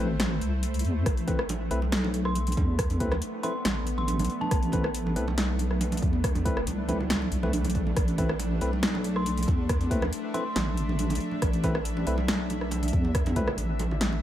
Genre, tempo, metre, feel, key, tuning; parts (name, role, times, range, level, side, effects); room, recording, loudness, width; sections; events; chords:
deep dubstep; 139 BPM; 4/4; half-time; A minor; A4 = 440 Hz
bowed-like drone; sustained chords; 0.0-14.2 s; A3 to E5; -35 LUFS; equal; built-in reverb
barky tine electric piano; stabs; 0.0-13.5 s; A3 to B4; -35 LUFS; left 1 dB; vintage 12-bit sampler grit, dub echo
deep soft wobble bass; bass; 0.0-14.2 s; A1 to E2; -28 LUFS; equal; chorus
deep house drum kit; drums; 0.2-14.1 s; hi-hat, rim click, snare drum; -31 LUFS; equal; overdrive
electronic kick drum; drums; 1.1-13.5 s; -28 LUFS; equal; overdrive
congas; percussion; 1.3-14.2 s; -35 LUFS; right 4 dB; dub echo
dark detuned synth bell; melody; 2.3-5.0, 9.2-10.9 s; A5 to C6; -37 LUFS; left 1 dB; chorus, dub echo
light reverb, digital ambience; -25 LUFS; side -12 dB against mid
0.0-14.2 A section
0.0 Amadd9